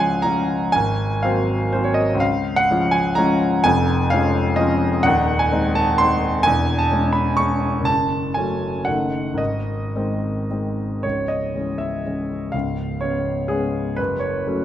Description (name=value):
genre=classical, romantic character piece for solo piano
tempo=107-130 BPM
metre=3/4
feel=rubato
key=Db major, C# minor from 5.0 s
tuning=A4 = 440 Hz
part: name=warm grand piano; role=solo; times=0.0-14.6 s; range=C#1 to C#6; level=-18 LUFS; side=equal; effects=none
room=moderate recital hall reverb, RT60 1.9 s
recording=none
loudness=-18 LUFS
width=side -11 dB against mid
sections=0.0-11.0 A section; 11.0-14.6 B section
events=none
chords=0.0 Db; 0.7 Ab9; 2.2 Db; 3.6 Db/F; 5.0 G#/D#; 6.5 C#m/E; 7.9 F#m; 8.9 D#dim/F#; 9.4 G#; 11.0 C#m; 12.5 C#7; 14.0 F#m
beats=0.25 | 0.74 1.24 1.73 | 2.21 2.70 3.18 | 3.64 4.11 4.58 | 5.05 5.52 5.99 | 6.45 6.92 7.39 | 7.88 8.36 8.86 | 9.39 9.94 10.49 | 11.04 11.54 12.04 | 12.54 13.02 13.50 | 13.99 14.48